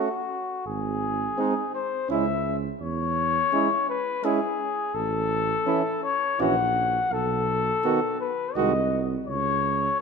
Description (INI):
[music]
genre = classical, brass quintet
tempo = 84 BPM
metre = 3/4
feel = rubato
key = C# minor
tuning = A4 = 440 Hz
[part]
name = mellow trumpet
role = melody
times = 0.0-10.0 s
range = F#4 to F#5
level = -25 LUFS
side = left 5 dB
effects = none
[part]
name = clear flugelhorn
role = second line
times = 0.0-8.7 s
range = D#4 to F#4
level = -31 LUFS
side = right 9 dB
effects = none
[part]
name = bright trombone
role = accompaniment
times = 0.0-8.7 s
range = D#3 to G#3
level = -32 LUFS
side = right 7 dB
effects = none
[part]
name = clear French horn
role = accompaniment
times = 0.0-8.7 s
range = G#3 to C#4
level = -32 LUFS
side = left 1 dB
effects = none
[part]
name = mellow tuba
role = bass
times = 0.7-9.9 s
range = G#1 to E2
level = -30 LUFS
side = right 6 dB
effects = none
[sound]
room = moderate scoring stage reverb, RT60 1.8 s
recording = none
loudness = -23 LUFS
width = side -5 dB against mid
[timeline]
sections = 0.0-10.0 A section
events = none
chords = 0.0 F#m; 0.7 G#; 2.1 C#m; 2.8 C#m/E; 4.9 A; 6.4 F#7/A#; 7.1 B7(no3); 8.6 G#7/B#; 9.3 N.C.